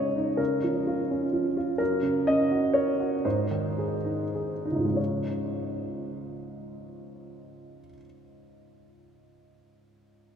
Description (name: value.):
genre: neoclassical minimalist piano.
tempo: 92-130 BPM.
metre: 3/4.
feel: rubato.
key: Db major.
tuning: A4 = 440 Hz.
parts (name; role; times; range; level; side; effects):
warm upright piano; solo; 0.0-10.4 s; Db2 to Eb5; -25 LUFS; equal; none.
room: wet cathedral reverb, RT60 4.6 s.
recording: recorded in a church or concert hall.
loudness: -25 LUFS.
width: side -7 dB against mid.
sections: 0.0-5.0 A section; 5.0-8.6 B section.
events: slowing down 1.1-5.0.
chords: 0.4 Bbm/Db; 1.8 Gb; 3.2 Ab; 5.0 Db.